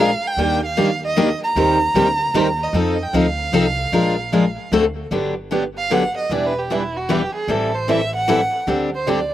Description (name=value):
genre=acoustic string swing (jazz manouche)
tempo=152 BPM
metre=3/4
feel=swing 63% on 8ths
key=Eb major, G major from 5.1 s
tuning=A4 = 440 Hz
part: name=warm violin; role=melody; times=0.0-9.3 s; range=E4 to Bb5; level=-21 LUFS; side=right 2 dB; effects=slapback echo
part: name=picked steel-string acoustic guitar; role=accompaniment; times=0.0-9.2 s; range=D3 to Bb4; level=-20 LUFS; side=left 4 dB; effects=none
part: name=picked steel-string acoustic guitar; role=accompaniment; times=0.0-9.2 s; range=D3 to C5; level=-23 LUFS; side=right 6 dB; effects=slapback echo
part: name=upright bass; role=bass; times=0.0-9.3 s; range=E1 to F2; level=-28 LUFS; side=equal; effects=none
room=little or no reverb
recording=recorded outdoors, with no room sound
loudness=-16 LUFS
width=side -12 dB against mid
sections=0.0-5.1 A section; 5.1-9.3 B section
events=violin solo 5.1-9.3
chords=0.4 Ebmaj7; 1.6 Cm7; 2.7 F7; 3.9 Bb7; 4.7 D7; 5.1 Gmaj7; 6.3 Em7; 7.5 Am7; 8.7 D7sus4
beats=| 0.38 0.77 1.17 | 1.56 1.96 2.35 | 2.75 3.14 3.54 | 3.93 4.33 4.72 | 5.12 5.51 5.91 | 6.30 6.70 7.09 | 7.49 7.88 8.28 | 8.68 9.07